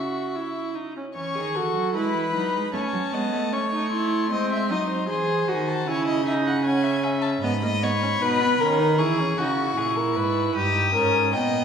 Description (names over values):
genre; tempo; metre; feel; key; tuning
classical, baroque-style fugue for string quartet; 77 BPM; 4/4; straight; C# minor; A4 = 440 Hz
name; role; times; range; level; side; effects
dark violin; melody; 0.0-11.6 s; E5 to D#6; -28 LUFS; left 6 dB; none
rich violin; second line; 0.0-11.6 s; F#4 to G#5; -26 LUFS; left 2 dB; none
warm viola; accompaniment; 0.0-11.6 s; A#3 to G#4; -27 LUFS; right 3 dB; none
warm cello; bass; 0.0-11.6 s; G2 to A3; -27 LUFS; right 3 dB; none
room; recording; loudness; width
wet recital hall reverb, RT60 1.6 s; recorded in a church or concert hall; -21 LUFS; side -7 dB against mid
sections
0.0-1.2 A section; 1.2-11.6 B section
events
none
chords
0.0 C#m; 2.7 F#m (rootless); 4.3 G#7; 5.9 C#m; 7.4 G#m; 9.0 C#m; 10.5 D#7/G